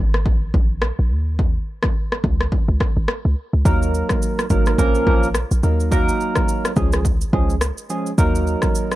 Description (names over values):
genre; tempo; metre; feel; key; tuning
afrobeats; 106 BPM; 4/4; swing 58% on 16ths; Eb minor; A4 = 439 Hz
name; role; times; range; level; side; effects
short 808-style bass; bass; 0.0-8.6 s; Ab1 to Eb2; -19 LUFS; equal; none
deep house drum kit; drums; 0.1-9.0 s; kick drum, rim click, shaker; -20 LUFS; equal; none
barky tine electric piano; accompaniment; 3.6-9.0 s; F3 to Bb4; -21 LUFS; right 2 dB; overdrive, lush chorus
room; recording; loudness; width
little or no reverb; dark, warm production; -16 LUFS; side -16 dB against mid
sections
0.0-9.0 A section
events
break 0.0-3.7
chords
0.3 N.C.; 2.2 Db5; 3.7 Ebm; 4.8 Bbm; 5.6 Ebm; 6.8 Db; 8.2 Ebm